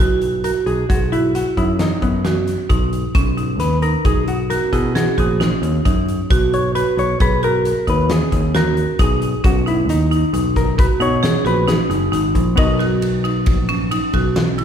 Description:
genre	progressive instrumental, band music in an uneven meter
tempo	134 BPM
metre	7/4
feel	straight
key	B major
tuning	A4 = 441 Hz
part	marimba with hard mallets	arpeggios	0.0-14.6 s	C#4 to G#4	-21 LUFS	right 3 dB	none
part	picked electric bass	bass	0.0-14.6 s	F#1 to B2	-20 LUFS	equal	none
part	huge arena drum kit	drums	0.2-14.6 s	hi-hat, kick drum, ride cymbal, snare drum	-20 LUFS	equal	none
part	hollow-body jazz guitar	accompaniment	0.4-14.6 s	F#3 to D#5	-22 LUFS	left 2 dB	none
room	moderate scoring stage reverb, RT60 1.5 s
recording	recorded in a church or concert hall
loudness	-15 LUFS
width	side -8 dB against mid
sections	0.0-12.6 A section; 12.6-14.6 B section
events	hollow-body jazz guitar solo 0.0-12.6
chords	0.0 Bmaj7; 6.3 G#madd9/B; 9.4 Bmaj7

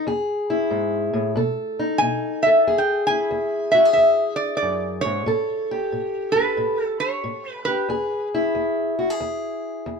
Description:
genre	acoustic country blues, solo or duo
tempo	92 BPM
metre	4/4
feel	swing 66% on 8ths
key	unclear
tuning	A4 = 440 Hz
part	fingerpicked steel-string acoustic guitar	accompaniment	0.0-10.0 s	E2 to A4	-23 LUFS	left 1 dB	none
part	metal-body resonator slide guitar	melody	2.0-8.3 s	B4 to G#5	-19 LUFS	equal	plate reverb
room	moderate small room ambience, RT60 0.5 s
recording	dark, warm production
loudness	-19 LUFS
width	side -5 dB against mid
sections	0.0-2.7 A section; 2.7-10.0 A section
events	none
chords	0.1 E; 1.4 B7; 2.7 E; 5.3 A7; 7.9 E

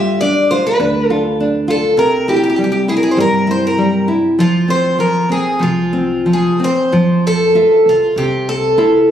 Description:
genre	fado-style ballad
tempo	99 BPM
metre	4/4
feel	rubato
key	F minor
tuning	A4 = 439 Hz
part	picked twelve-string acoustic guitar	melody	0.0-9.1 s	F4 to E5	-14 LUFS	equal	none
part	nylon-string guitar	accompaniment	0.0-9.1 s	C3 to E5	-15 LUFS	equal	none
part	upright bass	bass	0.0-9.0 s	C2 to G2	-24 LUFS	right 2 dB	none
room	wet recital hall reverb, RT60 1.6 s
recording	recorded on a phone in the room, studio ambience, compression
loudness	-12 LUFS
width	side -10 dB against mid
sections	0.0-6.9 A section; 6.9-9.1 B section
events	none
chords	0.0 G7; 2.0 C; 4.4 F5; 6.9 Fmaj7

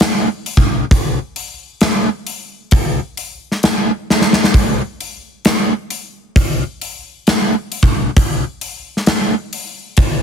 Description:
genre	rock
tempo	132 BPM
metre	4/4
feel	straight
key	none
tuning	none
part	gated 80s drum kit	drums	0.0-10.1 s	hi-hat, kick drum, snare drum	-13 LUFS	equal	none
room	little or no reverb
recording	heavily compressed radio sound, multiband compression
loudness	-14 LUFS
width	side -7 dB against mid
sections	0.0-10.2 A section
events	drum fill 4.1-4.5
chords	none

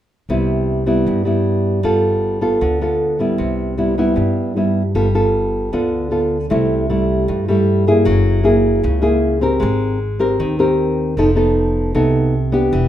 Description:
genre	bossa nova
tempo	154 BPM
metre	4/4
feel	straight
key	C major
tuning	A4 = 440 Hz
part	nylon-string guitar	accompaniment	0.3-12.9 s	G2 to A#4	-15 LUFS	equal	none
part	upright bass	bass	0.3-12.9 s	E1 to G2	-20 LUFS	equal	none
room	moderate large studio reverb, RT60 0.9 s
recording	minimal, uncompressed stereo recording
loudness	-14 LUFS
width	side -11 dB against mid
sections	0.3-6.5 A section; 6.5-12.9 B section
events	none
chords	0.3 Cmaj7; 1.8 G9; 3.4 Cmaj7; 5.0 G9; 6.5 C6; 8.1 F#9; 9.6 Abmaj9; 11.2 F7#11

